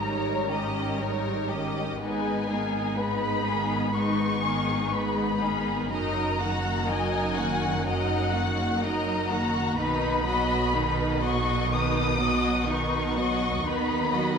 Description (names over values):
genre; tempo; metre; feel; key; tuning
classical, slow romantic movement for string orchestra; 62 BPM; 4/4; rubato; B major from 9.8 s; A4 = 439 Hz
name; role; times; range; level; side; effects
dark studio violin section; melody; 0.0-14.4 s; F#5 to D#6; -30 LUFS; left 3 dB; none
rich studio violin section; second line; 0.0-14.4 s; B3 to F#5; -31 LUFS; left 3 dB; none
rich studio viola section; accompaniment; 0.0-14.4 s; D#3 to D#4; -29 LUFS; right 2 dB; none
warm studio cello section; bass; 0.0-14.4 s; F#2 to D#3; -33 LUFS; right 2 dB; none
warm studio double bass section; bass; 0.0-14.4 s; F#1 to D#2; -33 LUFS; right 2 dB; none
room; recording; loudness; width
wet scoring stage reverb, RT60 2.0 s; minimal, uncompressed stereo recording; -24 LUFS; side -6 dB against mid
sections
0.0-14.4 A section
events
none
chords
0.0 D#7/G#; 2.0 G#m; 5.9 D#m/F#; 9.8 B; 13.7 B/D#